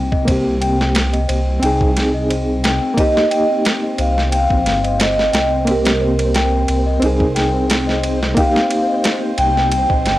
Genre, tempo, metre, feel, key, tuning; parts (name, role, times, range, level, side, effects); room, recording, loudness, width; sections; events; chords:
trip hop; 89 BPM; 4/4; swing 54% on 16ths; C minor; A4 = 440 Hz
bright reed electric piano; accompaniment; 0.0-10.2 s; Bb3 to Ab4; -20 LUFS; equal; fast tremolo
celesta; arpeggios; 0.0-10.2 s; C4 to G5; -22 LUFS; left 3 dB; tape echo
dark detuned saw bass; bass; 0.0-10.2 s; G1 to C2; -20 LUFS; equal; transformer saturation
boom bap sampler-style drum kit; drums; 0.1-10.2 s; kick drum, ride cymbal, snare drum; -20 LUFS; equal; small room ambience
vibraphone with soft mallets; melody; 3.0-10.2 s; Bb4 to G5; -19 LUFS; right 1 dB; tape echo
flickering grainy texture; texture; 3.8-10.2 s; C4 to C5; -29 LUFS; equal; built-in reverb
little or no reverb; dry, gritty hardware recording, cassette tape; -14 LUFS; side -15 dB against mid
0.0-10.2 A section
0.0 Cm7; 1.6 Abmaj7/C; 3.0 Cm7; 7.0 Bb9sus4/C; 8.4 Cm7